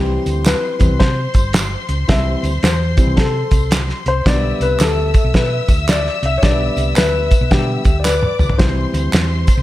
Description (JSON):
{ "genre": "uptempo 1960s-style soul", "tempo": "111 BPM", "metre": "4/4", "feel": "swing 64% on 8ths", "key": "unclear", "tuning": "A4 = 440 Hz", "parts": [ { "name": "clear studio string section", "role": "second line", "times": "0.0-9.6 s", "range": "C5 to E6", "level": "-26 LUFS", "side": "left 1 dB", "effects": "none" }, { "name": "dark concert grand piano", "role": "accompaniment", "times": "0.0-9.4 s", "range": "D3 to E5", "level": "-20 LUFS", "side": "left 3 dB", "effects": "none" }, { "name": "hollow-body short-scale fingered electric bass", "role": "bass", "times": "0.0-9.6 s", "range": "G1 to C3", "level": "-19 LUFS", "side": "equal", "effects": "none" }, { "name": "cloth-damped thuddy drum kit", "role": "drums", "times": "0.3-9.6 s", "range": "hi-hat, kick drum, snare drum, toms", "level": "-16 LUFS", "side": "equal", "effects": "none" }, { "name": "tambourine and handclaps", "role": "percussion", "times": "0.3-9.6 s", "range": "none", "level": "-27 LUFS", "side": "right 3 dB", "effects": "none" } ], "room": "light reverb, small room ambience", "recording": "none", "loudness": "-13 LUFS", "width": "side -15 dB against mid", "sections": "0.0-9.6 A section", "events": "grand piano solo 0.0-9.6; drum fill 8.1-8.6", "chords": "0.0 C; 4.3 G/B; 8.6 C" }